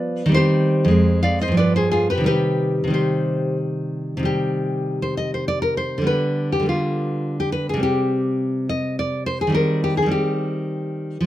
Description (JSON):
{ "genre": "romantic piece for solo classical guitar", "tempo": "86-108 BPM", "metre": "3/4", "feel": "rubato", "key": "C minor", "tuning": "A4 = 440 Hz", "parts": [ { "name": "nylon-string guitar", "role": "solo", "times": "0.0-11.3 s", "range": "F2 to F5", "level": "-18 LUFS", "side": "equal", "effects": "none" } ], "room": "little or no reverb", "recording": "close, detailed microphones", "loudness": "-18 LUFS", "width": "side -14 dB against mid", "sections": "0.0-4.2 A section; 4.2-11.3 B section", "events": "none", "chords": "0.4 Cm/Eb; 0.9 Fm; 1.6 G7; 2.2 Cm; 6.0 G7/D; 7.8 C5; 9.6 Cm/Eb" }